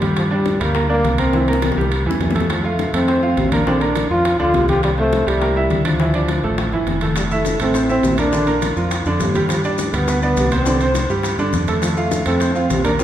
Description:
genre	latin, salsa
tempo	206 BPM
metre	4/4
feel	straight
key	F major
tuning	A4 = 440 Hz
part	clear grand piano	accompaniment	0.0-13.0 s	D3 to F5	-22 LUFS	right 2 dB	none
part	fingered electric bass	bass	0.0-13.0 s	F1 to G2	-22 LUFS	equal	none
part	congas	percussion	0.0-13.0 s	none	-26 LUFS	left 2 dB	none
part	timbales	percussion	0.0-13.0 s	none	-26 LUFS	right 2 dB	none
part	warm trombone	melody	0.2-13.0 s	F3 to G4	-20 LUFS	equal	none
part	bongos	percussion	0.2-13.0 s	none	-27 LUFS	left 5 dB	none
part	maracas	percussion	7.2-13.0 s	none	-33 LUFS	left 5 dB	none
room	wet recital hall reverb, RT60 1.9 s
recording	recorded in a church or concert hall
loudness	-15 LUFS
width	side -11 dB against mid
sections	0.0-13.0 A section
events	drum fill 1.3-2.5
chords	0.2 Gm; 1.3 C7; 2.5 F; 3.7 Bbadd9; 4.8 Csus4; 5.4 C7; 6.0 Dmadd9; 7.2 Fmaj7; 8.3 Bb; 9.5 G; 10.7 Csus2; 11.8 F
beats	| 0.16 0.46 0.75 1.04 | 1.33 1.62 1.92 2.21 | 2.50 2.79 3.08 3.37 | 3.67 3.96 4.25 4.54 | 4.83 5.12 5.42 5.71 | 6.00 6.29 6.58 6.87 | 7.16 7.46 7.75 8.04 | 8.33 8.62 8.91 9.20 | 9.49 9.79 10.08 10.37 | 10.66 10.95 11.24 11.53 | 11.82 12.12 12.41 12.70 | 12.99

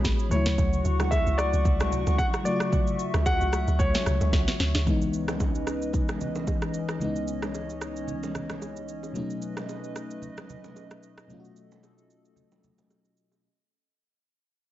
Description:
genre	amapiano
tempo	112 BPM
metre	4/4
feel	swing 55% on 16ths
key	C# minor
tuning	A4 = 439 Hz
part	mellow FM electric piano	accompaniment	0.0-13.5 s	C#2 to F#4	-32 LUFS	left 3 dB	chorus
part	hollow soft pad	sustained chords	0.0-13.4 s	E3 to C#6	-35 LUFS	equal	chorus, sidechain pumping
part	deep log drum bass	bass	0.0-4.9 s	A1 to D2	-25 LUFS	equal	none
part	afro-pop drum kit	drums	0.0-13.4 s	kick drum, rim click, shaker, snare drum	-28 LUFS	equal	none
part	bongos and congas	percussion	0.0-13.4 s	none	-38 LUFS	right 4 dB	none
part	warm grand piano	melody	0.3-4.6 s	C#5 to F#5	-31 LUFS	equal	digital delay
room	light reverb, digital ambience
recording	nothing above 7.8 kHz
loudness	-24 LUFS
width	side -14 dB against mid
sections	0.0-4.9 A section; 4.9-13.4 B section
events	drum fill 4.3-4.9; fade-out 4.9-13.4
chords	0.3 Dmaj7; 4.9 C#m9; 9.2 B9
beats	0.05 | 0.58 1.12 1.65 2.19 | 2.73 3.26 3.80 4.33 | 4.87 5.40 5.94 6.48 | 7.01 7.55 8.08 8.62 | 9.15 9.69 10.23 10.76 | 11.30 11.83 12.37 12.90

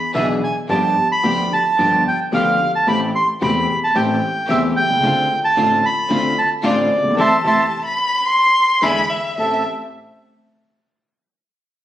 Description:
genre	tango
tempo	111 BPM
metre	4/4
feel	rubato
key	A minor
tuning	A4 = 440 Hz
part	bandoneon	melody	0.0-9.6 s	A4 to C6	-17 LUFS	right 1 dB	none
part	warm concert grand piano	accompaniment	0.1-9.6 s	E1 to A4	-21 LUFS	left 2 dB	none
part	clear studio string section	stabs	0.1-9.6 s	A3 to G#4	-28 LUFS	right 2 dB	none
part	upright bass	bass	0.1-9.6 s	E1 to E2	-30 LUFS	right 2 dB	none
part	warm violin	second line	7.2-9.6 s	E5 to C6	-16 LUFS	left 1 dB	none
room	moderate large studio reverb, RT60 1.0 s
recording	recorded on a phone in the room, studio reverb, compression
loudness	-15 LUFS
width	side -12 dB against mid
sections	0.0-9.4 A section; 9.4-11.5 B section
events	band accent 7.2-9.4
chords	0.0 E7; 0.7 G7; 2.9 Am7; 5.0 Dm7; 7.2 Am/E; 8.3 N.C.; 8.8 E7; 9.4 Am7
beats	0.15 | 0.70 1.24 1.79 2.33 | 2.88 3.42 3.95 4.49 | 5.03 5.57 6.10 6.64 | 7.18 7.72 8.27 8.83 | 9.38

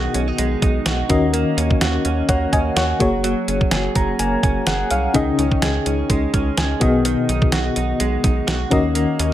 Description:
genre	1980s-style pop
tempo	126 BPM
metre	4/4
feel	swing 55% on 16ths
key	unclear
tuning	A4 = 442 Hz
part	FM electric piano with tremolo	accompaniment	0.0-9.3 s	Cb3 to Bb5	-20 LUFS	left 3 dB	none
part	direct-recorded clean electric guitar	riff	0.0-9.3 s	Eb3 to Ab4	-24 LUFS	right 6 dB	analog chorus, ping-pong delay
part	rubbery square bass	bass	0.0-9.3 s	Gb1 to Eb2	-23 LUFS	equal	none
part	clean 12-bit digital drum machine	drums	0.1-9.3 s	hi-hat, kick drum, snare drum	-21 LUFS	equal	none
room	light reverb, digital ambience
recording	none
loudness	-16 LUFS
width	side -12 dB against mid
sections	0.0-9.3 A section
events	FM electric piano fill 3.7-5.1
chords	0.0 Cb6; 1.1 Ebm7; 3.0 Gbadd9; 5.1 Dbsus2; 6.8 Cb6; 8.7 Ebm7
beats	0.39 0.86 | 1.34 1.81 2.29 2.77 | 3.24 3.72 4.20 4.67 | 5.15 5.62 6.10 6.58 | 7.05 7.53 8.01 8.48 | 8.96

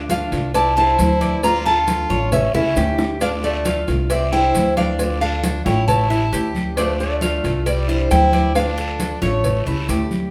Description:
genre	latin, Cuban son and guajira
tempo	135 BPM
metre	4/4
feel	straight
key	D minor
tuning	A4 = 440 Hz
part	nylon-string guitar	accompaniment	0.0-10.3 s	D3 to F4	-29 LUFS	equal	none
part	Cuban tres	arpeggios	0.0-10.3 s	D4 to D5	-28 LUFS	equal	none
part	upright bass	bass	0.0-10.3 s	A1 to D2	-25 LUFS	equal	none
part	nylon-string guitar	melody	0.1-10.1 s	C5 to Bb5	-23 LUFS	equal	none
part	brilliant trumpet	second line	0.1-10.1 s	G3 to F4	-32 LUFS	equal	none
part	congas	percussion	0.1-10.3 s	none	-28 LUFS	equal	none
part	cowbell and bongos	percussion	0.1-10.1 s	none	-29 LUFS	equal	none
part	guiro	percussion	0.1-10.3 s	none	-37 LUFS	equal	none
part	maracas	percussion	0.1-10.3 s	none	-39 LUFS	equal	none
room	wet large studio reverb, RT60 1.1 s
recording	band playing live in one room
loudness	-18 LUFS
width	mono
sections	0.0-10.3 A section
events	drum fill 2.5-3.2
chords	0.0 Dm; 0.5 Cadd9; 1.4 Dm; 2.3 A7; 3.2 Dm; 4.1 Cadd9; 5.0 Dm; 5.9 A7; 6.8 Dm; 7.7 Cadd9; 8.6 Dm; 9.4 A7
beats	0.10 0.55 0.99 | 1.43 1.88 2.32 2.77 | 3.21 3.66 4.10 4.55 | 4.99 5.44 5.88 6.33 | 6.77 7.22 7.66 8.11 | 8.55 9.00 9.44 9.89

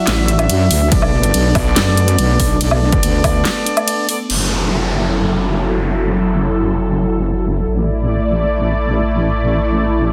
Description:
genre	heavy wobble dubstep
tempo	142 BPM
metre	4/4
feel	half-time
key	F# minor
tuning	A4 = 442 Hz
part	lush unison pad	sustained chords	0.0-10.1 s	F#3 to D5	-22 LUFS	equal	chorus, phaser, sidechain pumping
part	mellow brass ensemble	stabs	0.0-4.2 s	B3 to E5	-23 LUFS	equal	tape echo
part	wobble bass	bass	0.1-10.1 s	F#1 to F#2	-19 LUFS	equal	chorus, overdrive
part	dubstep drum kit	drums	0.1-4.4 s	crash cymbal, handclaps, hi-hat, ride cymbal, snare drum, woodblock	-21 LUFS	equal	none
part	electronic kick drum	drums	0.9-3.3 s	none	-20 LUFS	equal	overdrive
part	snarling distorted saw bass	bass	1.6-1.7 s	B1	-21 LUFS	equal	distortion, overdrive
part	downlifter	sound effects	4.3-7.7 s	none	-25 LUFS	equal	none
room	light reverb, digital ambience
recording	dense, heavily limited modern master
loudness	-16 LUFS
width	mono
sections	0.0-4.3 A section; 4.3-10.1 B section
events	drop 0.0-4.3; break 3.5-4.3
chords	0.0 Dadd9; 0.9 Bm7; 4.3 F#m7; 7.7 Asus4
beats	0.07 0.49 | 0.92 1.34 1.76 2.19 | 2.61 3.03 3.45 3.88 | 4.30 4.72 5.14 5.57 | 5.99 6.41 6.83 7.25 | 7.68 8.10 8.52 8.95 | 9.37 9.79

